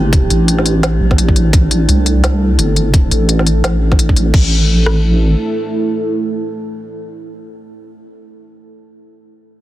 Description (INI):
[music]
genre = half-time drum and bass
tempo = 171 BPM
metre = 4/4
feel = swing 59% on 16ths, half-time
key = A minor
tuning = A4 = 440 Hz
[part]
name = dark analog pad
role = sustained chords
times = 0.0-7.9 s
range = A3 to A4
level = -21 LUFS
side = right 1 dB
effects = chorus, sidechain pumping
[part]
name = deep soft wobble bass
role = bass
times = 0.0-5.3 s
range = G1 to C2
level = -12 LUFS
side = equal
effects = chorus, tube saturation
[part]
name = metallic inharmonic drone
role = texture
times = 0.0-4.4 s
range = C4 to D4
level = -26 LUFS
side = right 2 dB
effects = chorus, built-in reverb
[part]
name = drum and bass drum kit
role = drums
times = 0.1-5.0 s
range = kick drum, rim click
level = -11 LUFS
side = equal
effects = none
[part]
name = organic electronic drum kit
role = drums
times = 0.1-4.4 s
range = crash cymbal, hi-hat, snare drum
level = -20 LUFS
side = left 2 dB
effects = none
[sound]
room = little or no reverb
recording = dense, heavily limited modern master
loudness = -11 LUFS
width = side -15 dB against mid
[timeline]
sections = 0.0-4.3 A section; 4.3-7.1 B section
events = none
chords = 0.0 Am; 4.3 A5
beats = | 0.13 0.48 0.83 1.18 | 1.53 1.88 2.23 2.58 | 2.93 3.28 3.63 3.98 | 4.34 4.69 5.04 5.39 | 5.74 6.09 6.44 6.79